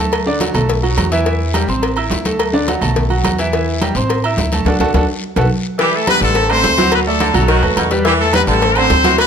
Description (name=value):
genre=latin, salsa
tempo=212 BPM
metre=4/4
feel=straight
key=E minor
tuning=A4 = 440 Hz
part: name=clear grand piano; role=accompaniment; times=0.0-9.3 s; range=D3 to E6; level=-18 LUFS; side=right 2 dB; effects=none
part: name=upright bass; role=bass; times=0.0-9.3 s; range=A1 to E2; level=-18 LUFS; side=equal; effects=none
part: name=agogo bells and timbales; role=percussion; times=0.1-9.3 s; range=none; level=-24 LUFS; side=right 8 dB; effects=none
part: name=congas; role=percussion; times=0.1-9.3 s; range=none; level=-23 LUFS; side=equal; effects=none
part: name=cowbell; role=percussion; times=0.1-9.3 s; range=none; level=-23 LUFS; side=left 7 dB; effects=none
part: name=guiro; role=percussion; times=0.1-9.3 s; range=none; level=-29 LUFS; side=left 6 dB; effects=none
part: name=brilliant horn section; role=melody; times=5.8-9.3 s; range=F#3 to C5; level=-14 LUFS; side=left 1 dB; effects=none
part: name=clear saxophone section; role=second line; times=5.8-9.3 s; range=B2 to E3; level=-21 LUFS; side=equal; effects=none
room=light reverb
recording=close, detailed microphones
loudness=-12 LUFS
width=side -7 dB against mid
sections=0.0-5.8 A section; 5.8-9.3 B section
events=drum fill 4.7-5.8; band accent 4.7-5.8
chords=0.1 D; 0.7 B5; 1.3 Em; 1.8 Am; 2.4 D; 3.0 B5; 3.5 Em; 4.1 Am; 4.7 D; 5.2 B5; 5.8 Em7; 6.4 Am; 6.9 D; 7.5 B7; 8.1 Em7; 8.6 Am